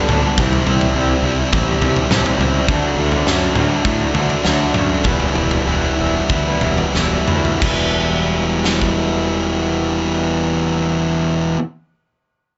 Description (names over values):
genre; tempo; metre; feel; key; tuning
quiet-loud alternative rock; 87-104 BPM; 4/4; straight; E minor; A4 = 438 Hz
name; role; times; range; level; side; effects
electric guitar through a small old amp; arpeggios; 0.0-11.6 s; E2 to A4; -28 LUFS; equal; lush chorus
thick fuzz guitar; riff; 0.0-11.6 s; G2 to E4; -21 LUFS; equal; distortion
fuzz fingered electric bass; bass; 0.1-11.6 s; E1 to A2; -23 LUFS; equal; overdrive
big rock drum kit; drums; 0.1-9.0 s; crash cymbal, kick drum, snare drum, toms; -22 LUFS; equal; none
room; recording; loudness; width
light reverb; nothing above 7.8 kHz; -17 LUFS; mono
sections
0.0-7.6 A section; 7.6-10.4 B section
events
slowing down 2.7-7.6; drum fill 7.0-7.6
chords
0.4 C; 2.7 D; 5.1 Em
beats
| 0.38 0.96 1.54 2.12 | 2.69 3.27 3.86 4.45 | 5.05 5.67 6.30 6.95 | 7.62 8.31 8.99 9.68